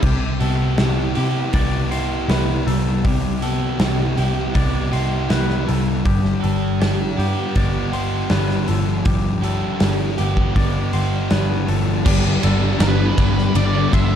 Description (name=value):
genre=rock, shoegaze and dream pop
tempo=80 BPM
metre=4/4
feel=straight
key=C major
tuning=A4 = 440 Hz
part: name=twangy electric guitar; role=arpeggios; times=0.0-14.2 s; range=G4 to C6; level=-31 LUFS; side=left 9 dB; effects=wide subtle chorus, tape echo
part: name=overdriven semi-hollow guitar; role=riff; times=0.0-14.1 s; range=G2 to G4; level=-25 LUFS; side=right 12 dB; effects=reverse reverb
part: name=thick fuzz guitar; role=riff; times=0.0-14.2 s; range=G2 to G4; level=-24 LUFS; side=left 10 dB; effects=distortion, lush chorus
part: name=vintage muted picked electric bass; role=bass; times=0.0-14.2 s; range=G1 to C3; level=-21 LUFS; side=equal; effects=none
part: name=big rock drum kit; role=drums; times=0.0-14.1 s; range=crash cymbal, hi-hat, kick drum, ride cymbal, snare drum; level=-22 LUFS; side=equal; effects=none
part: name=biting overdriven guitar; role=riff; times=12.0-14.2 s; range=G2 to D4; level=-26 LUFS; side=equal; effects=spring reverb
part: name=octave-fuzz lead guitar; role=melody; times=12.8-14.2 s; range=B4 to E5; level=-29 LUFS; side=right 1 dB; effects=distortion, tape echo
room=studio ambience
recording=dark, warm production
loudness=-16 LUFS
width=side -9 dB against mid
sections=0.0-12.1 A section; 12.1-14.2 B section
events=none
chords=0.0 Cmaj7; 6.1 G7; 12.1 G